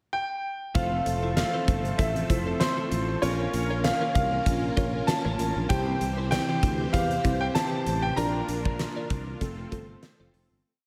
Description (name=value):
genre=1980s-style pop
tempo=97 BPM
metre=4/4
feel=swing 55% on 16ths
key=F major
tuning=A4 = 440 Hz
part: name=clear concert grand piano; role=melody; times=0.1-9.1 s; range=C5 to Bb5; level=-32 LUFS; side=equal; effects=diffuse ambient delay
part: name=FM electric piano with tremolo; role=accompaniment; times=0.7-10.7 s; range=A3 to Db5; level=-37 LUFS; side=equal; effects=none
part: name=direct-recorded clean electric guitar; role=riff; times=0.7-10.5 s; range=E4 to D5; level=-40 LUFS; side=equal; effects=none
part: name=string machine, full ensemble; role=sustained chords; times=0.8-10.6 s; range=C3 to A4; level=-37 LUFS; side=equal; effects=phaser, ensemble chorus
part: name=analog synth brass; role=stabs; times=0.8-10.6 s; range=E3 to C5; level=-39 LUFS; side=equal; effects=chorus, diffuse ambient delay
part: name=sustaining fretless electric bass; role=bass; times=0.8-10.6 s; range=F1 to E2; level=-33 LUFS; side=equal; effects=analog chorus
part: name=big rock drum kit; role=drums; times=0.8-10.5 s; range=hi-hat, kick drum, snare drum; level=-32 LUFS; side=equal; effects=none
room=moderate plate reverb, RT60 1.9 s, small room ambience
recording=dreamy mix soaked in reverb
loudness=-27 LUFS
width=mono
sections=0.0-0.8 pickup bar; 0.8-10.6 chorus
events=fade-out 8.2-10.6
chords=0.0 N.C.; 0.8 Fmaj7; 3.2 Bbm; 5.7 C; 8.2 Bb; 9.4 F